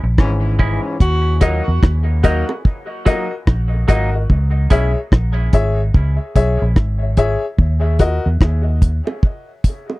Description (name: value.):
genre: dub reggae.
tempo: 73 BPM.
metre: 4/4.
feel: swing 62% on 16ths.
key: unclear.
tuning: A4 = 440 Hz.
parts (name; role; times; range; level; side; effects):
semi-hollow electric guitar; accompaniment; 0.0-4.9 s; Gb3 to Fb4; -27 LUFS; right 4 dB; dub echo.
vintage muted fingered electric bass; bass; 0.0-9.0 s; Ab1 to Fb2; -16 LUFS; equal; none.
brilliant trombone section; second line; 0.2-1.0 s; Ab2 to Db4; -28 LUFS; left 2 dB; dub echo.
deep reggae drum kit; drums; 0.2-9.9 s; hi-hat, kick drum, rim click; -13 LUFS; equal; none.
clear tenor saxophone; melody; 1.0-1.4 s; Gb4; -28 LUFS; equal; dub echo.
warm upright piano; stabs; 1.4-8.3 s; Gb4 to Fb5; -22 LUFS; left 4 dB; dub echo.
bongos; percussion; 2.5-2.6, 9.1-10.0 s; none; -28 LUFS; right 4 dB; dub echo.
room: little or no reverb.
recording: dry, close 1970s-style studio recording.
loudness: -14 LUFS.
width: side -20 dB against mid.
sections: 0.0-10.0 A section.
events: break 0.0-1.0; band accent 0.0-1.0; part muted 1.0-7.6.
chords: 0.0 Dbm; 1.0 Ebm; 4.3 Dbm; 7.6 N.C..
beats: 0.19 | 1.01 1.83 2.65 3.47 | 4.30 5.12 5.94 6.76 | 7.58 8.40 9.22.